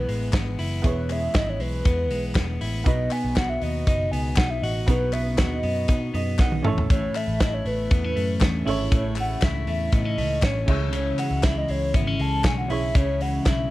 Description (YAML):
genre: jangly indie pop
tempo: 119 BPM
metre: 4/4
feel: straight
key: E major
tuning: A4 = 440 Hz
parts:
  - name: hollow clarinet-like synth lead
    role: melody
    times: 0.0-13.7 s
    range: B4 to A5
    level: -29 LUFS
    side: equal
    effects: chorus, slapback echo, plate reverb
  - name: clear upright piano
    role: accompaniment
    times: 0.0-13.7 s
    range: B3 to A5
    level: -33 LUFS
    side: right 6 dB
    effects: plate reverb
  - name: clean electric guitar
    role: arpeggios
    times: 0.0-13.7 s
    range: E2 to F#4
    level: -29 LUFS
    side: left 2 dB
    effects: slapback echo
  - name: vintage muted picked electric bass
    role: bass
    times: 0.0-13.7 s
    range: E1 to B2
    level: -27 LUFS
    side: equal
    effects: none
  - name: loose indie drum kit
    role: drums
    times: 0.1-13.6 s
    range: crash cymbal, hi-hat, kick drum, ride cymbal, snare drum, toms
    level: -24 LUFS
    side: equal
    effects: none
  - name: group handclap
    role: percussion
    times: 0.3-13.6 s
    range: none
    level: -38 LUFS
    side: left 9 dB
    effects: none
  - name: string machine, cellos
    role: sustained chords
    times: 6.9-13.7 s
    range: C#3 to E4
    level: -35 LUFS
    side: left 1 dB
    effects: none
room: little or no reverb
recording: none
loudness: -21 LUFS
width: side -17 dB against mid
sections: 0.0-13.7 A section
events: upright piano fill 5.9-6.9; drum fill 6.4-6.9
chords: 0.0 E; 2.9 B; 6.6 A; 10.7 C#m